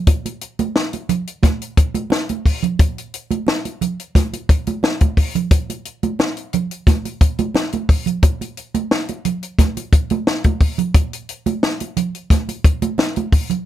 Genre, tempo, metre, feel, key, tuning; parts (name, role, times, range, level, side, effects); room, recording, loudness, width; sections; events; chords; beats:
funk; 88 BPM; 4/4; straight
compact cocktail drum kit; drums; 0.1-13.7 s; hi-hat, kick drum, snare drum; -15 LUFS; left 1 dB
congas; percussion; 0.1-13.6 s; -22 LUFS; right 7 dB
light reverb; -16 LUFS; side -13 dB against mid
0.0-13.7 A section
| 0.07 0.76 1.44 2.12 | 2.79 3.48 4.15 4.83 | 5.51 6.19 6.87 7.55 | 8.23 8.91 9.59 10.27 | 10.95 11.63 12.31 12.98